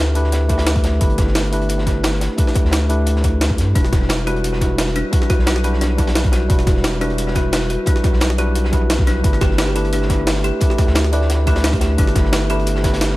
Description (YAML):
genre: liquid drum and bass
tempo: 175 BPM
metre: 4/4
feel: straight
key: unclear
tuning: A4 = 438 Hz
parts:
  - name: tine electric piano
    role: accompaniment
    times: 0.0-13.2 s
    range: G3 to B4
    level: -22 LUFS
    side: equal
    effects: analog delay
  - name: saturated sub bass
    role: bass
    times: 0.0-13.2 s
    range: E1 to G2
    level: -19 LUFS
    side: equal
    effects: none
  - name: breakbeat sampler-style drum kit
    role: drums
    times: 0.2-13.1 s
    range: hi-hat, snare drum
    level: -23 LUFS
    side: equal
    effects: analog delay
  - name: crunchy breakbeat drum kit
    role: drums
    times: 0.2-13.2 s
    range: hi-hat, snare drum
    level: -30 LUFS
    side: equal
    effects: high-pass filter on hats, high-pass filter on snare, high-pass filter on room
  - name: electronic kick drum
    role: drums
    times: 0.5-12.9 s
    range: none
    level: -17 LUFS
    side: equal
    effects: none
  - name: kalimba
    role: arpeggios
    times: 3.8-12.7 s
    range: D4 to D5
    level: -25 LUFS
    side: equal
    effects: tape echo
room: small room reverb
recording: echo-heavy mix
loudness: -14 LUFS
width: side -18 dB against mid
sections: 0.0-13.2 A section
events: none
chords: 0.0 G6; 3.8 Em9; 9.2 G6